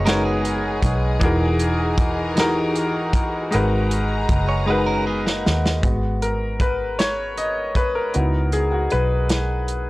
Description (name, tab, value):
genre	slow six-eight R&B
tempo	52 BPM (dotted quarters)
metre	6/8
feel	straight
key	G# minor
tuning	A4 = 442 Hz
part	clean electric guitar	second line	0.0-5.8 s	A#3 to C#5	-27 LUFS	right 4 dB	none
part	clear baby grand piano	accompaniment	0.0-9.9 s	E3 to D#5	-22 LUFS	left 1 dB	none
part	warm studio string section	sustained chords	0.0-5.8 s	E3 to A#5	-30 LUFS	left 1 dB	none
part	vintage muted fingered electric bass	bass	0.0-9.9 s	E1 to D#2	-23 LUFS	equal	none
part	warm soul drum kit	drums	0.1-9.9 s	hi-hat, kick drum, snare drum	-22 LUFS	equal	none
room	small room ambience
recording	transformer saturation, cassette tape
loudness	-18 LUFS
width	side -19 dB against mid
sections	0.0-5.8 A section; 5.8-9.9 B section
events	drum fill 4.7-5.8; grand piano solo 5.8-9.9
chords	0.0 G#m11; 1.2 Emaj9#11; 3.5 G#m9; 5.8 G#m7; 8.1 C#m11